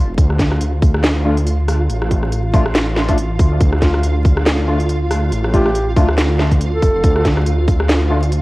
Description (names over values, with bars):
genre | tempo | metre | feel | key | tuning
deep dubstep | 140 BPM | 4/4 | swing 56% on 16ths, half-time | D minor | A4 = 440 Hz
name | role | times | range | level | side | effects
dark detuned saw bass | bass | 0.0-8.4 s | F1 to D2 | -17 LUFS | equal | none
flickering grainy texture | texture | 0.0-8.4 s | F4 | -26 LUFS | right 2 dB | built-in reverb, cassette tape
electronic kick drum | drums | 0.2-7.8 s | none | -14 LUFS | equal | cassette tape
garage drum kit | drums | 0.2-8.4 s | hi-hat, rim click, snare drum | -20 LUFS | equal | cassette tape
percussive organ stab | stabs | 1.2-8.2 s | A3 to F4 | -22 LUFS | left 1 dB | ensemble chorus, cassette tape, dub echo
mellow duduk | melody | 3.8-7.3 s | F4 to A4 | -22 LUFS | equal | dub echo
room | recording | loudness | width
light reverb | home recording on cassette, vinyl crackle | -13 LUFS | side -20 dB against mid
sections
0.0-8.4 A section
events
none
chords
0.0 Dm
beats
| 0.18 0.61 1.04 1.46 | 1.89 2.32 2.75 3.18 | 3.61 4.04 4.46 4.89 | 5.32 5.75 6.18 6.61 | 7.04 7.46 7.89 8.32